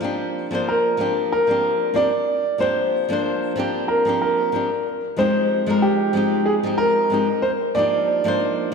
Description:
chillout; 93 BPM; 4/4; swing 55% on 16ths; Bb mixolydian; A4 = 440 Hz
flamenco guitar; accompaniment; 0.0-8.7 s; F3 to C5; -22 LUFS; left 1 dB; auto-pan, digital delay
dark grand piano; melody; 0.7-8.7 s; G4 to D5; -20 LUFS; right 1 dB; ping-pong delay
wet scoring stage reverb, RT60 1.8 s; -18 LUFS; side -5 dB against mid
0.0-8.7 A section
0.0 Bb6; 5.2 Fm9; 7.8 Ebmaj7

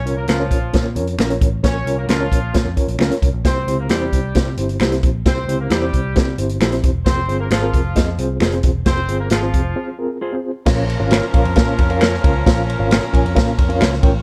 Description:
uptempo 1960s-style soul; 133 BPM; 4/4; straight; Bb dorian; A4 = 440 Hz
warm horn section; second line; 0.0-14.0 s; F3 to Db5; -28 LUFS; equal
mellow reed electric piano; accompaniment; 0.0-14.1 s; Bb2 to Ab5; -25 LUFS; equal; tremolo
vintage muted picked electric bass; bass; 0.0-14.2 s; E1 to C3; -24 LUFS; equal
vintage drum kit; drums; 0.1-14.1 s; crash cymbal, hi-hat, kick drum, ride cymbal, snare drum; -19 LUFS; equal
mellow electric guitar; stabs; 0.3-13.9 s; Db4 to Db5; -26 LUFS; equal
finger snaps; percussion; 0.3-13.9 s; -30 LUFS; equal
tonewheel organ; sustained chords; 10.7-14.2 s; F3 to F4; -33 LUFS; equal
small room reverb; dark, warm production; -17 LUFS; mono
0.0-10.7 A section; 10.7-14.2 B section
break 9.8-10.7
0.0 Bbm; 3.4 C; 7.1 Fm; 10.7 Bbm

